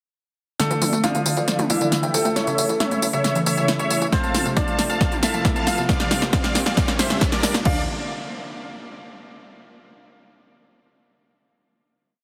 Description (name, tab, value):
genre	uplifting trance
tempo	136 BPM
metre	4/4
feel	straight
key	D minor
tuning	A4 = 445 Hz
part	dense compressed supersaw	melody	0.6-7.8 s	Bb4 to A5	-29 LUFS	equal	sidechain pumping, low-pass filter, tape echo
part	clear concert grand piano	second line	0.6-7.8 s	E3 to F5	-30 LUFS	equal	digital delay
part	unison pluck	arpeggios	0.6-7.9 s	C3 to F4	-31 LUFS	equal	sidechain pumping, tape echo
part	big-room dance drum kit	drums	0.6-7.7 s	crash cymbal, hi-hat, snare drum, tambourine, toms	-26 LUFS	equal	overdrive
part	riser	sound effects	2.5-7.7 s	none	-36 LUFS	equal	none
part	tight sequencer bass	bass	0.7-7.9 s	F1 to D2	-36 LUFS	equal	none
part	electronic kick drum	drums	4.1-7.7 s	none	-25 LUFS	equal	overdrive
room	moderate huge ambient reverb, RT60 4.7 s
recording	heavily compressed radio sound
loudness	-21 LUFS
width	mono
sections	0.6-7.7 build; 7.7-9.4 final chord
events	build-up 0.6-7.7; drum fill 0.6-7.7; filter sweep on supersaw synth 0.6-7.7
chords	0.6 Dmadd9; 2.4 A; 4.1 F; 5.9 C7sus4; 7.7 Dmadd9